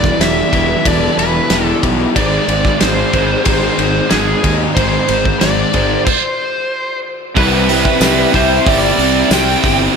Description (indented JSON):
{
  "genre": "rock, shoegaze and dream pop",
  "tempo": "92 BPM",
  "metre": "4/4",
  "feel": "straight",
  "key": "unclear",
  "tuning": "A4 = 439 Hz",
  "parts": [
    { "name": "nasal lead guitar with a parked wah", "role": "melody", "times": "0.0-9.8 s", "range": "Ab4 to G5", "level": "-18 LUFS", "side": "equal", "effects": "overdrive, slapback echo" },
    { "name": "picked twelve-string acoustic guitar", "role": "arpeggios", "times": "0.0-9.8 s", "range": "E4 to F#5", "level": "-23 LUFS", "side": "right 2 dB", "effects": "ensemble chorus, slapback echo" },
    { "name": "crunchy overdriven guitar", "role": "riff", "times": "0.0-10.0 s", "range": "E2 to C4", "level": "-19 LUFS", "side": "right 1 dB", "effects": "none" },
    { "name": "overdriven electric guitar", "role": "riff", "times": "0.0-10.0 s", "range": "Ab2 to G4", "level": "-20 LUFS", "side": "right 12 dB", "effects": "reverse reverb" },
    { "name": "raw garage guitar", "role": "riff", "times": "0.0-10.0 s", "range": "E2 to Ab4", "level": "-21 LUFS", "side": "left 13 dB", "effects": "overdrive, wide subtle chorus" },
    { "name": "fuzz fingered electric bass", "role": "bass", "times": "0.0-9.9 s", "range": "E1 to Eb2", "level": "-19 LUFS", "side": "equal", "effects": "overdrive" },
    { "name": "loose indie drum kit", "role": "drums", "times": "0.0-9.8 s", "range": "crash cymbal, hi-hat, kick drum, ride cymbal, snare drum", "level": "-18 LUFS", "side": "equal", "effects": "none" },
    { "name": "tambourine", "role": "percussion", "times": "8.0-9.5 s", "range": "none", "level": "-24 LUFS", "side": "left 18 dB", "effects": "none" }
  ],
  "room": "light reverb, small room ambience",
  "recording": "none",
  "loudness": "-11 LUFS",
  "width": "side -6 dB against mid",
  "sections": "0.0-7.4 A section; 7.4-10.0 B section",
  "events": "stop 6.1-7.4",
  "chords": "0.0 Em7; 2.2 Ab; 7.4 Cmaj9"
}